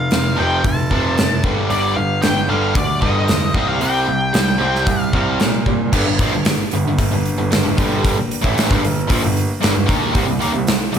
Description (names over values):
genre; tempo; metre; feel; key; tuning
classic rock; 114 BPM; 4/4; straight; G minor; A4 = 440 Hz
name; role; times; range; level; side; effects
octave-fuzz lead guitar; melody; 0.0-5.6 s; D5 to A5; -21 LUFS; left 2 dB; distortion
distorted electric guitar; riff; 0.0-11.0 s; F2 to Eb4; -20 LUFS; right 1 dB; overdrive
clear grand piano; bass; 0.0-11.0 s; F1 to Bb2; -21 LUFS; right 1 dB; none
gated 80s drum kit; drums; 0.1-11.0 s; crash cymbal, hi-hat, kick drum, snare drum; -19 LUFS; equal; none
string machine, cellos; sustained chords; 5.9-11.0 s; G3 to C5; -29 LUFS; left 1 dB; none
room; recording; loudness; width
small room ambience; none; -15 LUFS; side -8 dB against mid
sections
0.0-5.9 A section; 5.9-11.0 B section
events
none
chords
0.0 F; 1.4 G5; 3.6 C5; 5.9 Gm; 10.2 C5